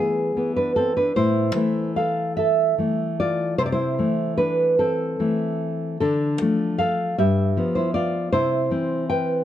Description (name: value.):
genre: romantic piece for solo classical guitar.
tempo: 50 BPM (dotted quarters).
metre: 6/8.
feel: uneven beats, rubato.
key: A minor.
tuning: A4 = 440 Hz.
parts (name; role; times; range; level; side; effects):
nylon-string guitar; solo; 0.0-9.4 s; G2 to G5; -20 LUFS; equal; none.
room: light reverb.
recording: close, detailed microphones.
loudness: -20 LUFS.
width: side -11 dB against mid.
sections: 0.0-9.4 A section.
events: none.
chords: 0.0 E7; 1.1 Am; 3.6 Am/C; 6.0 Dm; 7.2 G7; 8.3 C.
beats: | 1.15 2.37 | 3.58 4.79 | 6.01 7.18 | 8.32.